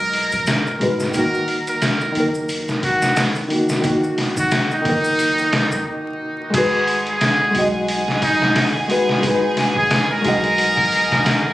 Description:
trip hop; 89 BPM; 4/4; swing 57% on 16ths; G# minor; A4 = 439 Hz
trumpet with metal mute; melody; 0.0-11.5 s; D#4 to A#4; -20 LUFS; equal; tape echo
felt-muted upright piano; accompaniment; 0.0-11.5 s; D#3 to D#5; -21 LUFS; left 1 dB; tremolo, vintage 12-bit sampler grit, tape echo
soft 808-style bass; bass; 0.0-11.5 s; D#1 to G#2; -32 LUFS; equal
trip hop sampler-style drum kit; drums; 0.1-11.4 s; crash cymbal, hi-hat, kick drum, snare drum; -21 LUFS; equal; studio reverb
maracas; percussion; 0.3-5.8 s; -34 LUFS; equal
bright chamber violin section; sustained chords; 6.5-11.5 s; G#4 to G#5; -24 LUFS; equal
light reverb, small room ambience; recorded on a phone in the room, studio reverb, vinyl crackle, compression; -16 LUFS; side -15 dB against mid
0.0-6.5 A section; 6.5-11.5 B section
stop 5.9-6.5
0.0 G#m7; 1.1 D#m; 6.5 G#m7

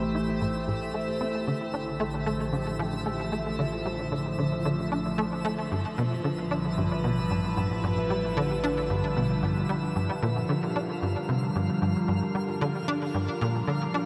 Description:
ambient, sequencer-driven space music; 113 BPM; 4/4; straight; G minor from 10.0 s; A4 = 440 Hz
evolving wavetable pad; sustained chords; 0.0-14.1 s; D3 to C5; -32 LUFS; equal; phaser, built-in reverb
tight sequencer bass; riff; 0.0-14.1 s; G2 to E4; -32 LUFS; equal; ensemble chorus, delay
analog drone; bass; 0.0-9.9 s; A1; -40 LUFS; equal; chorus
twinkling granular texture; texture; 0.0-14.1 s; E4 to F5; -41 LUFS; equal; built-in reverb, subtle chorus
wet huge ambient reverb, RT60 8.2 s; dreamy mix soaked in reverb; -28 LUFS; mono
0.0-10.0 A section; 10.0-14.1 B section
filter sweep on analog synth bass 0.0-10.0
0.0 Am7; 1.5 Dm7/A; 5.7 G7/A; 10.0 Gm7

